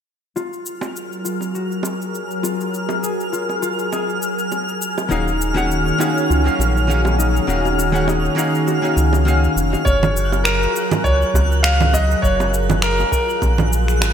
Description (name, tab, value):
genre	sunset chillout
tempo	101 BPM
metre	4/4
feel	swing 55% on 16ths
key	F# major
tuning	A4 = 443 Hz
part	lush unison pad	sustained chords	0.9-14.1 s	D#3 to G#5	-23 LUFS	equal	chorus, phaser
part	concert harp	arpeggios	0.4-11.1 s	D#4 to G#4	-27 LUFS	left 5 dB	low-pass filter, ping-pong delay
part	electronic shaker, congas and finger snaps	drums	0.4-14.1 s	none	-23 LUFS	right 2 dB	gated reverb
part	bongos	percussion	0.4-14.1 s	none	-31 LUFS	right 4 dB	none
part	twinkling granular texture	texture	0.9-14.1 s	E#6 to F#6	-26 LUFS	equal	built-in reverb, lush chorus
part	hollow-body jazz guitar	accompaniment	5.1-9.8 s	D#3 to F#5	-22 LUFS	moving between left 3 dB and right 3 dB	auto-pan, ping-pong delay
part	round analog bass	bass	5.1-14.1 s	D#1 to C#2	-18 LUFS	equal	tube saturation
part	bright concert grand piano	melody	9.8-14.1 s	A#4 to E#5	-20 LUFS	equal	ping-pong delay
part	electronic kick drum	drums	9.9-13.6 s	none	-20 LUFS	equal	overdrive
room	moderate lush hall reverb, RT60 3.1 s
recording	bright 1980s-style digital production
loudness	-16 LUFS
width	side -8 dB against mid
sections	0.4-9.9 A section; 9.9-14.1 B section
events	none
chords	0.4 F#maj9; 5.1 D#m11; 9.9 F#maj9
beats	| 0.36 0.95 1.54 2.14 | 2.73 3.33 3.92 4.51 | 5.11 5.70 6.30 6.89 | 7.48 8.08 8.67 9.27 | 9.86 10.46 11.05 11.64 | 12.24 12.83 13.43 14.02